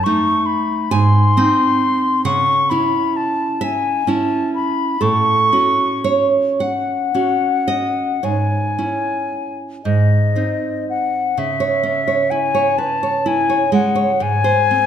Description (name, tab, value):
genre	romantic duo for flute and classical guitar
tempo	36-45 BPM (dotted quarters)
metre	6/8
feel	rubato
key	C# minor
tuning	A4 = 439 Hz
part	concert flute	melody	0.0-14.9 s	D#5 to C#6	-18 LUFS	left 4 dB	none
part	nylon-string guitar	accompaniment	0.0-14.9 s	G#2 to A5	-18 LUFS	right 3 dB	none
room	wet recital hall reverb, RT60 1.7 s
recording	none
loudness	-15 LUFS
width	side -9 dB against mid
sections	0.0-11.4 A section; 11.4-14.9 B section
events	none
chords	0.0 D#(b5, no3); 0.9 G#; 2.3 C#m; 5.0 F#m/A; 8.2 C#m/G#; 9.8 G#; 11.4 C#m; 14.2 G#